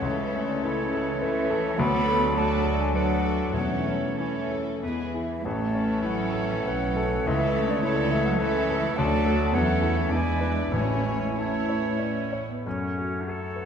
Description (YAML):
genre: classical, romantic movement for piano and orchestra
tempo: 90-109 BPM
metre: 3/4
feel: rubato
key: A major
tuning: A4 = 440 Hz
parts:
  - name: clear grand piano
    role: melody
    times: 0.0-13.7 s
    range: A1 to D5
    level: -29 LUFS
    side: left 3 dB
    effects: none
  - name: clear studio violin section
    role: melody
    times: 0.0-12.4 s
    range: G#4 to C#5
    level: -41 LUFS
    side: left 1 dB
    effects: none
  - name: clear oboe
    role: second line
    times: 0.0-13.7 s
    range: B4 to D5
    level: -36 LUFS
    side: right 3 dB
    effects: none
  - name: mellow hollow silver concert flute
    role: second line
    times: 0.0-13.7 s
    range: C#5 to B5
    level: -32 LUFS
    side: left 1 dB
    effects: none
  - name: rich studio violin section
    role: second line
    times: 0.0-12.4 s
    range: A3 to F#4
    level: -38 LUFS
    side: left 4 dB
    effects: none
  - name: dark studio viola section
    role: accompaniment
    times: 0.0-12.7 s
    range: A3 to E4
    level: -35 LUFS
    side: right 3 dB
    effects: none
  - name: warm French horn section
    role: sustained chords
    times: 0.0-12.3 s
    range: E3 to D4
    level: -33 LUFS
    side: left 3 dB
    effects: none
  - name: warm studio cello section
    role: bass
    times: 0.0-12.0 s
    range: C#3 to B3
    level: -31 LUFS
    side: right 2 dB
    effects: none
  - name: warm studio double bass section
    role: bass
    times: 0.0-12.4 s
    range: A1 to E2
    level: -32 LUFS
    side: right 3 dB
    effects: none
  - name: clear clarinet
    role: second line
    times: 0.1-13.7 s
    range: C#4 to A4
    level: -36 LUFS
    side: equal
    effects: none
  - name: dark bassoon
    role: accompaniment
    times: 0.1-13.7 s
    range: E3 to A3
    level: -34 LUFS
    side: right 4 dB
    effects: none
  - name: timpani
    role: percussion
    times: 3.5-4.5, 10.7-11.6 s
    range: E2 to A2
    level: -34 LUFS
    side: left 1 dB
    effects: none
room: wet scoring stage reverb, RT60 1.7 s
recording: none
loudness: -23 LUFS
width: side -7 dB against mid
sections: 0.0-12.7 A section; 12.7-13.7 B section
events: none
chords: 0.0 A/C#; 1.8 D; 3.5 A/E; 4.8 E; 5.5 A; 7.3 A/C#; 9.0 D; 9.5 A/E; 10.1 E7; 10.7 A; 12.7 F#m